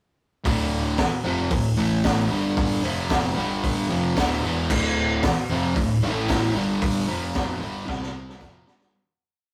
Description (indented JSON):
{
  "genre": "garage rock duo or trio",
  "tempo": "113 BPM",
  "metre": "4/4",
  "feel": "straight",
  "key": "D minor",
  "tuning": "A4 = 442 Hz",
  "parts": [
    { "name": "fuzz guitar", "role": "riff", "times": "0.4-8.9 s", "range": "D2 to C4", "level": "-26 LUFS", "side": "equal", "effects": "distortion" },
    { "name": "growling picked electric bass", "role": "bass", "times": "0.5-8.9 s", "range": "D1 to C2", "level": "-34 LUFS", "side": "equal", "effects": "overdrive" },
    { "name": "raw garage drum kit", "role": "drums", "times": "0.5-8.9 s", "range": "crash cymbal, hi-hat, kick drum, snare drum", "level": "-28 LUFS", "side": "equal", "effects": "none" },
    { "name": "tambourine", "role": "percussion", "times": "1.0-8.5 s", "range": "none", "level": "-47 LUFS", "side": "equal", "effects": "none" }
  ],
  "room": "moderate studio reverb, RT60 0.6 s",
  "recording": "rough rehearsal-room recording, warm saturation",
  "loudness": "-23 LUFS",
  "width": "mono",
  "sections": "0.4-8.9 riff",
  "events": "fade-out 6.8-8.9; drum fill 7.9-8.9",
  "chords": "0.4 Dm; 1.8 A5; 2.3 G5; 2.8 F5; 3.4 G5; 3.9 Dm; 6.0 A5; 6.6 G5; 7.1 F5; 7.6 G5; 7.9 C5; 8.4 Dm"
}